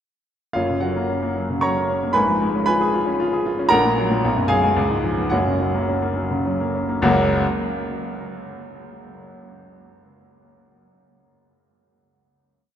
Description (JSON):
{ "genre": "classical, virtuoso piano study", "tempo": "104-116 BPM", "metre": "3/4", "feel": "rubato", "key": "F# major", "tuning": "A4 = 441 Hz", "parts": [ { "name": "clear grand piano", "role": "solo", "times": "0.5-7.4 s", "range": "F#1 to C#6", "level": "-18 LUFS", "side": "equal", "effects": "none" } ], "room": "wet cathedral reverb, RT60 5.5 s", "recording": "in a vast, echoing space", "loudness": "-18 LUFS", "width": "side -9 dB against mid", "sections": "0.6-7.0 A section; 7.0-8.7 final chord", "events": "none", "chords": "0.6 F#; 2.1 C#7/G#; 3.7 F#/A#; 4.2 G#m13/B; 4.8 C#7; 5.3 F#", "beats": "| 0.56 1.09 1.62 | 2.15 2.67 3.19 | 3.71 4.23 4.76 | 5.32 5.88 6.45 | 7.02" }